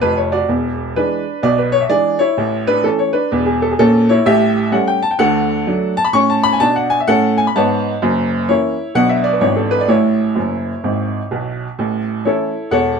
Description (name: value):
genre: jazz, stride piano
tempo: 128 BPM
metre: 4/4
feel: swing 63% on 8ths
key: A major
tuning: A4 = 440 Hz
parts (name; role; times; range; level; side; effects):
- bright upright piano; solo; 0.0-13.0 s; E1 to C#6; -13 LUFS; equal; none
room: moderate small room reverb, RT60 0.6 s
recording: dark, warm production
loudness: -13 LUFS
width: side -6 dB against mid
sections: 0.0-11.8 A section; 11.8-13.0 A section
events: upright piano fill 10.4-11.8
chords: 0.5 E7; 2.4 A; 4.3 A7; 5.2 D; 6.1 A; 8.0 F#7; 9.0 Bm; 9.4 E7/G#; 9.9 A